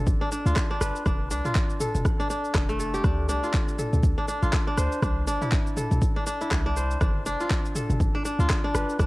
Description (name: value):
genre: afro house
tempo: 121 BPM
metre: 4/4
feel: swing 58% on 16ths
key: unclear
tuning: A4 = 436 Hz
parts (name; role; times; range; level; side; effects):
- kora; arpeggios; 0.0-9.1 s; A3 to C5; -28 LUFS; equal; sidechain pumping, cassette tape, tape echo
- warm 808-style bass; bass; 0.0-9.1 s; F1 to D2; -26 LUFS; equal; sidechain pumping
- deep house drum kit; drums; 0.1-9.1 s; handclaps, rim click, shaker, toms; -32 LUFS; equal; cassette tape
- electronic kick drum; drums; 0.1-9.1 s; none; -25 LUFS; equal; cassette tape
room: digital ambience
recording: home recording on cassette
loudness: -23 LUFS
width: side -20 dB against mid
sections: 0.0-9.1 A section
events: none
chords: 0.0 G7; 1.1 F; 3.0 Dm; 5.0 C; 7.0 G7